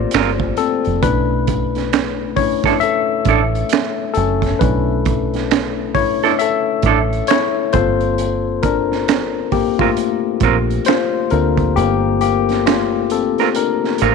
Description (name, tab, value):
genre	R&B, neo-soul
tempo	67 BPM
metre	4/4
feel	swing 61% on 16ths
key	unclear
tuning	A4 = 440 Hz
part	tine electric piano	accompaniment	0.0-14.1 s	A3 to E5	-17 LUFS	left 10 dB	medium stereo tremolo
part	deep dub fingered electric bass	bass	0.0-14.1 s	F1 to D2	-20 LUFS	right 2 dB	none
part	electric guitar through a small old amp	second line	0.1-14.1 s	C4 to Bb4	-18 LUFS	right 17 dB	none
part	crunchy breakbeat drum kit	drums	0.1-14.1 s	finger snaps, hi-hat, kick drum, snare drum	-20 LUFS	right 10 dB	none
room	light reverb, small room ambience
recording	1960s-style stereo with parts hard left and right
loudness	-14 LUFS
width	side -5 dB against mid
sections	0.0-14.1 A section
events	tine electric piano solo 0.0-14.1; kick muted 11.8-14.1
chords	0.0 Gm11; 1.0 Bm11; 7.7 Gm11